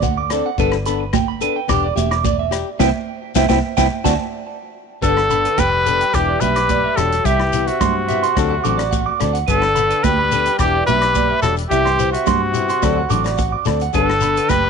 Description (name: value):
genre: highlife guitar band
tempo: 108 BPM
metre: 4/4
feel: straight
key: G major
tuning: A4 = 440 Hz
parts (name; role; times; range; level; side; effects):
- clean electric guitar; arpeggios; 0.0-14.7 s; B4 to D6; -22 LUFS; right 14 dB; spring reverb
- fingered electric bass; bass; 0.0-14.7 s; E1 to G2; -22 LUFS; equal; none
- vintage drum kit; drums; 0.0-14.6 s; hi-hat, kick drum, rim click, snare drum; -24 LUFS; left 3 dB; none
- congas; percussion; 0.0-14.6 s; none; -24 LUFS; right 15 dB; none
- shekere; percussion; 0.0-14.6 s; none; -28 LUFS; left 10 dB; none
- flamenco guitar; accompaniment; 0.3-14.4 s; F#3 to A4; -24 LUFS; left 16 dB; none
- clear trumpet; melody; 5.0-14.7 s; F#4 to B4; -18 LUFS; equal; none
- breathy tenor saxophone; second line; 5.0-14.7 s; C3 to G3; -26 LUFS; left 14 dB; none
room: light reverb, small room ambience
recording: 1960s-style stereo with parts hard left and right, nothing above 10.6 kHz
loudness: -15 LUFS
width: side -6 dB against mid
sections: 0.0-5.0 A section; 5.0-14.7 B section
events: band accent 2.8-5.0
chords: 0.0 D7; 0.6 Gadd9; 1.7 Em7; 2.8 Cmaj7; 3.9 D7; 5.0 Gadd9; 6.1 Em7; 7.3 Cmaj7; 8.4 D7; 9.5 Gadd9; 10.6 Em7; 11.7 Cmaj7; 12.8 D7; 13.9 Gadd9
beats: 0.03 | 0.58 1.14 1.69 2.25 | 2.80 3.36 3.91 4.47 | 5.02 5.58 6.14 6.70 | 7.25 7.81 8.37 8.93 | 9.48 10.04 10.60 11.16 | 11.71 12.27 12.83 13.38 | 13.94 14.50